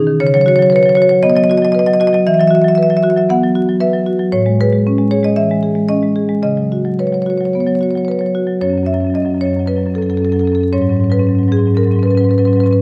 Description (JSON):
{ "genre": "classical, contemporary piece for solo marimba", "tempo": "115 BPM", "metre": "4/4", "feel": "rubato", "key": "C# minor, F# minor from 8.6 s", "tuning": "A4 = 439 Hz", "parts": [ { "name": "marimba with medium mallets", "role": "solo", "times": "0.0-12.8 s", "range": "F#2 to F#5", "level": "-14 LUFS", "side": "equal", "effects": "none" } ], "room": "wet recital hall reverb, RT60 1.5 s", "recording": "vinyl crackle", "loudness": "-14 LUFS", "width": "mono", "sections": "0.0-8.6 A section; 8.6-12.8 B section", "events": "none", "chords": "0.2 C#9sus4; 2.2 Esus2; 4.3 Amaj7; 6.4 C#9sus4; 8.6 F#m; 10.7 G#m7" }